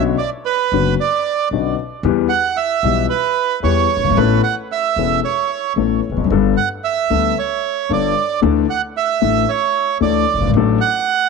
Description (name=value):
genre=tango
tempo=113 BPM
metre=4/4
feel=rubato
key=D major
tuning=A4 = 442 Hz
part: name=bandoneon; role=melody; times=0.0-11.3 s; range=B4 to F#5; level=-18 LUFS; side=right 10 dB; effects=tape echo
part: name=warm concert grand piano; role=accompaniment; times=0.0-10.8 s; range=E1 to A4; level=-17 LUFS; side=left 14 dB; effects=none
part: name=upright bass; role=bass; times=0.0-10.8 s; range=E1 to E2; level=-21 LUFS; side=right 1 dB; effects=transformer saturation
room=moderate spring reverb, RT60 2.6 s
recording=1960s-style stereo with parts hard left and right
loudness=-15 LUFS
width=side -4 dB against mid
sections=0.0-11.3 A section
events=none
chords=0.0 Bmadd9; 2.0 Em; 4.2 Aadd9; 6.3 Gadd9; 8.4 Dsus2; 10.5 D/A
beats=0.45 0.98 1.51 | 2.04 2.57 3.10 3.63 | 4.17 4.70 5.23 5.76 | 6.29 6.83 7.36 7.89 | 8.42 8.95 9.48 10.01 | 10.54 11.07